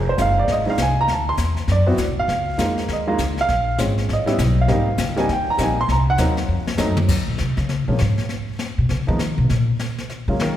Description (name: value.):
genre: jazz piano trio.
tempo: 200 BPM.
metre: 4/4.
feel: swing 62% on 8ths.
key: Bb minor.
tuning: A4 = 440 Hz.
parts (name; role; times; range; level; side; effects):
warm baby grand piano; melody; 0.0-10.6 s; F3 to C6; -21 LUFS; right 1 dB; none.
upright bass; bass; 0.0-10.6 s; F1 to Eb3; -20 LUFS; equal; none.
jazz brush drum kit; drums; 0.2-10.6 s; brushed snare drum, crash cymbal, hi-hat, kick drum, snare drum, toms; -28 LUFS; left 3 dB; none.
room: wet concert hall reverb, RT60 1.9 s.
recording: recorded in a church or concert hall.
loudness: -18 LUFS.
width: side -11 dB against mid.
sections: 0.0-7.1 A section; 7.1-10.6 A section.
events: grand piano solo 0.0-7.1; drum fill 6.5-7.1; upright bass solo 7.1-10.6.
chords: 0.0 Fm7; 1.1 Dadd9; 2.3 Db69; 3.5 Bbm7; 4.1 Asus2; 4.7 Abmaj9; 5.9 Cm7b5; 6.5 F7b9; 7.1 Bbm7; 8.3 N.C.; 8.9 Db7sus2; 9.5 Gbmaj7.